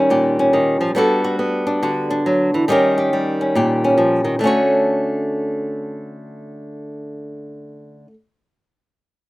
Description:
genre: solo jazz.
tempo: 140 BPM.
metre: 4/4.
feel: swing 65% on 8ths.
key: D major.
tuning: A4 = 440 Hz.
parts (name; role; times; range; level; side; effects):
flamenco guitar; solo; 0.0-8.1 s; Bb2 to C#5; -16 LUFS; equal; none.
room: light reverb.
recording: rough home demo mix.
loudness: -15 LUFS.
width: side -19 dB against mid.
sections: 0.0-4.4 A section; 4.4-7.8 B section.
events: none.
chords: 0.0 Eb7; 1.0 Gmaj9; 2.7 Eb7; 4.4 Dmaj7.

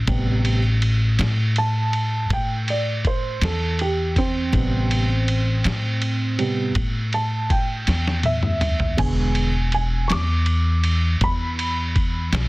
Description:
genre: slow blues.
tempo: 54 BPM (dotted quarters).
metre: 12/8.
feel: straight.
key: A minor.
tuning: A4 = 440 Hz.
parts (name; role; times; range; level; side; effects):
upright bass; bass; 0.0-12.5 s; E1 to A2; -21 LUFS; equal; none.
dark upright piano; accompaniment; 0.1-12.5 s; C3 to D6; -25 LUFS; right 2 dB; plate reverb.
lo-fi sampler-style drum kit; drums; 0.1-12.5 s; kick drum, ride cymbal, snare drum, splash cymbal, toms; -24 LUFS; equal; none.
room: little or no reverb.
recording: dense, heavily limited modern master.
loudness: -19 LUFS.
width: side -21 dB against mid.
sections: 0.0-12.5 A section.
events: upright piano solo 0.0-12.5; drum fill 7.9-9.0.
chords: 0.1 Am7; 9.0 E7.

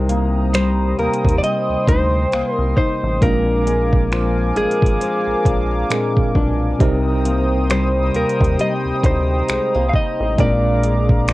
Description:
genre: contemporary R&B.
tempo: 67 BPM.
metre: 4/4.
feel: swing 58% on 16ths.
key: C minor.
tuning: A4 = 441 Hz.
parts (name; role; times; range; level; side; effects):
tine electric piano; accompaniment; 0.0-11.3 s; Bb2 to Bb4; -23 LUFS; right 1 dB; medium stereo tremolo, cassette tape.
chorused pulse-width pad; sustained chords; 0.0-11.3 s; Ab4 to Eb6; -25 LUFS; equal; cassette tape.
nylon-string guitar; arpeggios; 0.0-11.3 s; Bb2 to Eb4; -24 LUFS; left 3 dB; cassette tape.
rubbery square bass; bass; 0.0-11.3 s; Ab1 to Eb2; -20 LUFS; equal; none.
smooth R&B drum kit; drums; 0.1-11.3 s; finger snaps, hi-hat, kick drum; -18 LUFS; equal; cassette tape.
direct-recorded clean electric guitar; melody; 0.5-11.3 s; Ab4 to F5; -21 LUFS; equal; cassette tape.
room: little or no reverb.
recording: home recording on cassette.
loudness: -15 LUFS.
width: side -18 dB against mid.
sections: 0.0-11.3 A section.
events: none.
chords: 0.0 Cm7; 3.2 Bb7; 6.8 Cm7; 10.4 Bb7.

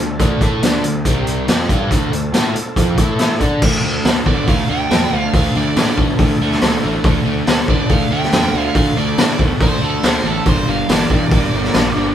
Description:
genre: blues rock power trio and southern rock.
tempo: 140 BPM.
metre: 4/4.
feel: straight.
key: D minor.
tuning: A4 = 440 Hz.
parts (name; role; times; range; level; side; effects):
overdriven tonewheel organ; sustained chords; 0.0-12.1 s; E3 to C5; -29 LUFS; right 2 dB; slow rotary speaker, chorus vibrato.
crunchy overdriven guitar; riff; 0.0-12.1 s; G2 to D5; -18 LUFS; equal; none.
fuzz picked electric bass; bass; 0.0-12.1 s; G1 to D3; -24 LUFS; equal; overdrive.
raw garage drum kit; drums; 0.2-11.8 s; crash cymbal, hi-hat, kick drum, snare drum; -16 LUFS; equal; none.
nasal lead guitar with a parked wah; second line; 4.3-12.1 s; A4 to G5; -22 LUFS; right 4 dB; overdrive.
room: moderate studio reverb, RT60 0.6 s.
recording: band playing live in one room.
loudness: -13 LUFS.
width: side -10 dB against mid.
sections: 0.0-3.6 A section; 3.6-12.1 B section.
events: lead electric guitar solo 3.6-12.1.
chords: 0.0 Dm; 1.1 C5; 1.5 Dm; 3.0 A5; 3.4 D5; 3.6 Dm; 10.5 Gm.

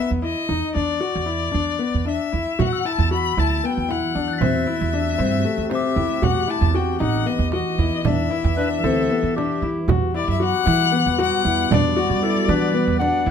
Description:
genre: contemporary instrumental, chamber music in an uneven meter.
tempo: 230 BPM (eighths).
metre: 7/8.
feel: straight.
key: unclear.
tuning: A4 = 441 Hz.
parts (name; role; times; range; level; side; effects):
clear violin; melody; 0.0-13.3 s; D5 to B5; -24 LUFS; left 8 dB; none.
clear concert grand piano; arpeggios; 0.0-13.3 s; A3 to F#4; -24 LUFS; left 4 dB; none.
upright bass; bass; 0.1-13.3 s; A1 to E3; -23 LUFS; right 4 dB; none.
deep dark ambient pad; sustained chords; 3.5-13.3 s; E3 to G4; -27 LUFS; right 3 dB; chorus, built-in reverb.
frame drum; percussion; 2.6-13.3 s; none; -25 LUFS; right 8 dB; none.
glockenspiel with hard plastic mallets; texture; 2.7-6.4, 10.2-11.0 s; B5 to B6; -33 LUFS; left 6 dB; none.
clear clarinet; second line; 8.6-13.3 s; G4 to F#5; -24 LUFS; left 2 dB; none.
room: light reverb.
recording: close, detailed microphones.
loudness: -18 LUFS.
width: side -7 dB against mid.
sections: 0.0-9.9 A section; 9.9-13.3 B section.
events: none.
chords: 0.0 B; 0.8 Bmadd11/E; 2.6 Esus2; 4.4 Am7/E; 6.2 B; 8.0 Em; 9.9 Gmaj7/E.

